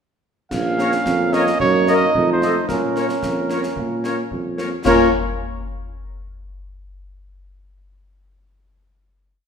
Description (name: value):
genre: military-style march for wind band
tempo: 111 BPM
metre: 2/4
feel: straight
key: Bb minor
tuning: A4 = 439 Hz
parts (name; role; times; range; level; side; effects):
- warm cornet; melody; 0.5-5.1 s; Bb4 to F5; -22 LUFS; right 3 dB; none
- bright trombone section; sustained chords; 0.5-5.1 s; A3 to Eb4; -25 LUFS; right 3 dB; none
- warm tuba; bass; 0.5-5.1 s; Bb1 to Bb2; -21 LUFS; right 2 dB; none
- concert snare drum, clash cymbals and concert bass drum; drums; 0.5-5.2 s; none; -30 LUFS; left 2 dB; none
- clear woodwind section; second line; 0.8-5.1 s; A4 to Eb5; -25 LUFS; left 3 dB; none
- mellow French horn section; accompaniment; 0.8-5.1 s; A3 to Bb4; -24 LUFS; left 7 dB; none
room: moderate scoring stage reverb, RT60 1.8 s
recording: minimal, uncompressed stereo recording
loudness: -16 LUFS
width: side -6 dB against mid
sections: 0.5-4.9 A section; 4.9-5.9 final chord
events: none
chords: 0.5 Bbm; 1.6 Ebm/Gb; 2.1 F7; 2.7 Bbm